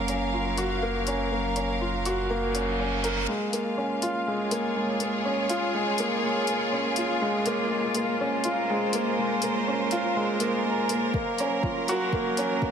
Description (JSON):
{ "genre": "piano and strings electronica", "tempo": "122 BPM", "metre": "4/4", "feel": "straight", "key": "Bb minor", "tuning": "A4 = 440 Hz", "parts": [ { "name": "clear studio string section", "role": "sustained chords", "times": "0.0-12.7 s", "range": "Gb3 to F5", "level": "-29 LUFS", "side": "equal", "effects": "sidechain pumping" }, { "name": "dark grand piano", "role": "riff", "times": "0.0-12.7 s", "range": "Ab3 to Bb4", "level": "-26 LUFS", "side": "equal", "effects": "ping-pong delay" }, { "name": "warm sub bass", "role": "bass", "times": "0.0-3.3 s", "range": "Gb1", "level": "-33 LUFS", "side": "equal", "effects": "tube saturation, sidechain pumping" }, { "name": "electronic hi-hat", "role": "drums", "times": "0.1-12.5 s", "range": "none", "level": "-32 LUFS", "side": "left 4 dB", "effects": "overdrive" }, { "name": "reverse cymbal and riser", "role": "sound effects", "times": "2.5-3.3, 12.1-12.7 s", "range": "none", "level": "-34 LUFS", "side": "right 2 dB", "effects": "none" }, { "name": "electronic kick drum", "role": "drums", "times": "11.1-12.7 s", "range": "none", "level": "-30 LUFS", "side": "equal", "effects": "overdrive" } ], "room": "moderate lush hall reverb, RT60 2.0 s", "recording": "high-pass filter", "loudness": "-24 LUFS", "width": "side -7 dB against mid", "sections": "0.0-3.3 A section; 3.3-12.7 B section", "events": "reverse cymbal 2.5-3.3; build-up 3.3-12.7", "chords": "0.0 Gbmaj7; 3.3 Bbm7; 11.2 Gbmaj7" }